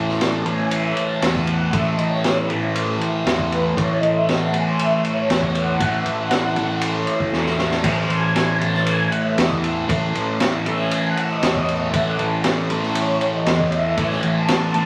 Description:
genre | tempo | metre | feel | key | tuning
psychedelic rock | 118 BPM | 4/4 | straight | A lydian | A4 = 440 Hz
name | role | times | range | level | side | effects
fuzz guitar | riff | 0.0-14.9 s | A2 to A3 | -24 LUFS | equal | distortion, phaser
fuzz picked electric bass | bass | 0.0-14.9 s | A1 to E2 | -27 LUFS | equal | overdrive
vintage drum kit | drums | 0.1-14.9 s | crash cymbal, kick drum, ride cymbal, snare drum | -26 LUFS | equal | none
ensemble organ-string | sustained chords | 0.2-14.9 s | B4 to A5 | -26 LUFS | equal | phaser, ensemble chorus
room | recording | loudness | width
wet studio reverb, RT60 0.5 s | vinyl crackle | -20 LUFS | mono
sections
0.0-14.9 A section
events
string machine solo 0.0-14.9; drum fill 7.3-7.8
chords
0.0 A

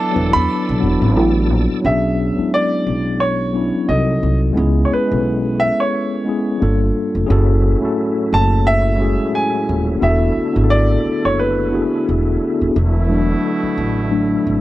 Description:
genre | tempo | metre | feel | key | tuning
R&B | 88 BPM | 4/4 | swing 56% on 16ths | unclear | A4 = 440 Hz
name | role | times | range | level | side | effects
clear baby grand piano | melody | 0.0-12.0 s | B4 to B5 | -20 LUFS | right 1 dB | none
mellow tine electric piano | accompaniment | 0.0-14.6 s | F#3 to B4 | -18 LUFS | left 2 dB | medium stereo tremolo
bright tonewheel organ | sustained chords | 0.0-1.8, 7.3-14.6 s | A2 to E6 | -28 LUFS | right 1 dB | chorus vibrato, fast rotary speaker
clear horn section | stabs | 0.0-1.5, 12.7-14.6 s | B2 to A4 | -27 LUFS | right 3 dB | none
upright bass | bass | 0.2-14.6 s | D#1 to E2 | -17 LUFS | equal | none
room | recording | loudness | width
small room ambience | dry, close 1970s-style studio recording | -14 LUFS | side -16 dB against mid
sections
0.0-1.8 A section; 1.8-12.7 B section; 12.7-14.6 C section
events
tine electric piano solo 12.7-14.6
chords
0.0 E7sus4; 1.8 Bm69; 3.9 Cdim7; 4.6 C#m7; 6.6 Gm9; 7.3 F#m9; 10.0 E7sus4

